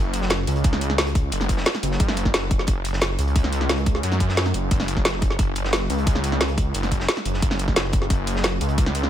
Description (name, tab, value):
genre	dark technical drum and bass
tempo	177 BPM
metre	4/4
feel	straight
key	unclear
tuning	A4 = 440 Hz
part	wide detuned saw bass	bass	0.0-9.1 s	F#1 to F#2	-23 LUFS	equal	chorus, tube saturation, sidechain pumping
part	crunchy breakbeat drum kit	drums	0.1-9.0 s	hi-hat, snare drum	-34 LUFS	equal	high-pass filter on hats, high-pass filter on snare, high-pass filter on room
part	drum and bass drum kit	drums	0.1-9.1 s	hi-hat, snare drum	-24 LUFS	equal	none
part	electronic kick drum	drums	0.6-8.8 s	none	-21 LUFS	equal	none
room	little or no reverb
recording	none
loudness	-19 LUFS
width	side -11 dB against mid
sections	0.0-9.1 A section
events	none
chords	none